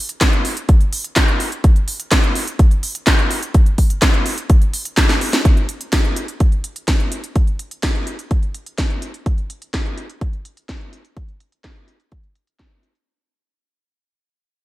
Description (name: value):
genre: italo disco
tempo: 126 BPM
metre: 4/4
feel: straight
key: none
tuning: none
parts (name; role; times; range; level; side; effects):
- house drum kit; drums; 0.1-13.0 s; handclaps, hi-hat, snare drum; -19 LUFS; equal; low-pass filter on hats, studio reverb, low-pass filter on snare, gated reverb
- electronic kick drum; drums; 0.2-12.7 s; none; -15 LUFS; equal; studio reverb
room: digital ambience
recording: none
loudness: -15 LUFS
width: side -17 dB against mid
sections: 0.0-5.5 A section; 5.5-13.1 B section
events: drum fill 5.1-5.5; fade-out 5.5-13.1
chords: none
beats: 0.21 0.69 1.17 | 1.64 2.12 2.59 3.07 | 3.55 4.02 4.50 4.97 | 5.45 5.93 6.40 6.88 | 7.36 7.83 8.31 8.78 | 9.26 9.74 10.21 10.69 | 11.16 11.64 12.12 12.59